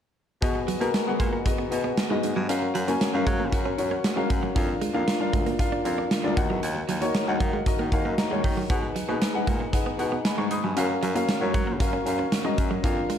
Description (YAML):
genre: 1980s-style pop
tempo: 116 BPM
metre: 4/4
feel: straight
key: F# major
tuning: A4 = 441 Hz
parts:
  - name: dark baby grand piano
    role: accompaniment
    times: 0.4-13.2 s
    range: B3 to D#6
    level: -27 LUFS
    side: left 3 dB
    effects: none
  - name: warm baritone saxophone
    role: bass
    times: 0.4-13.0 s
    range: D2 to F#3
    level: -31 LUFS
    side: equal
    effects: none
  - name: big rock drum kit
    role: drums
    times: 0.4-13.2 s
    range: hi-hat, kick drum, snare drum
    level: -27 LUFS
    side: right 1 dB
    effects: none
  - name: direct-recorded clean electric guitar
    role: riff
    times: 0.6-13.2 s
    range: F#3 to D4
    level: -33 LUFS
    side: right 6 dB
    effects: analog chorus, digital delay
room: light reverb, studio reverb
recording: dark, warm production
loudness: -23 LUFS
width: side -9 dB against mid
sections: 0.4-13.2 A section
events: grand piano fill 7.1-8.7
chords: 0.4 B6; 2.5 F#maj7; 4.6 A#; 6.4 D#m; 8.7 B6; 10.8 F#maj7